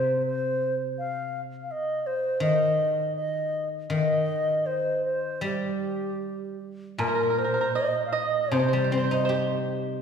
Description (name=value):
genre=chinese traditional, Chinese chamber ensemble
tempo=75-83 BPM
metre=4/4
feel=rubato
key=unclear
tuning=A4 = 440 Hz
part: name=bright reedy low xiao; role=melody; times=0.0-9.7 s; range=G4 to F5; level=-27 LUFS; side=right 1 dB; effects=none
part: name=guzheng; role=accompaniment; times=0.0-10.0 s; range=Bb2 to G4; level=-28 LUFS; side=left 2 dB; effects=none
part: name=pipa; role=second line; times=7.0-9.6 s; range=Bb4 to Eb5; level=-30 LUFS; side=right 4 dB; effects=none
part: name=woodblock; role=percussion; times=7.0-8.7 s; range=none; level=-38 LUFS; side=left 1 dB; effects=none
room=wet concert hall reverb, RT60 2.0 s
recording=heard from further back in the room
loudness=-24 LUFS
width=side -7 dB against mid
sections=0.0-7.0 A section; 7.0-10.0 B section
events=none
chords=none